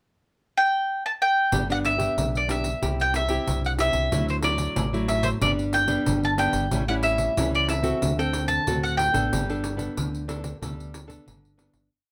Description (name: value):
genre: samba and choro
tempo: 92 BPM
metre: 4/4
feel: straight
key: G major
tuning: A4 = 439 Hz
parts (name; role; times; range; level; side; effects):
- bowl-back mandolin; melody; 0.6-11.2 s; C5 to A5; -26 LUFS; equal; none
- nylon-string guitar; accompaniment; 1.5-11.9 s; G2 to A4; -31 LUFS; equal; none
- deep dub fingered electric bass; bass; 1.5-11.9 s; G1 to D2; -32 LUFS; equal; none
- pandeiro; percussion; 1.5-11.9 s; none; -33 LUFS; equal; none
room: moderate small room reverb, RT60 0.5 s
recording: none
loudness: -24 LUFS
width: mono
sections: 0.0-1.5 pickup bar; 1.5-11.9 A section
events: fade-out 9.3-11.9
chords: 0.0 N.C.; 1.5 G; 2.8 C; 4.1 Dadd9; 5.4 G; 6.7 A7; 8.0 D7; 9.3 Gadd9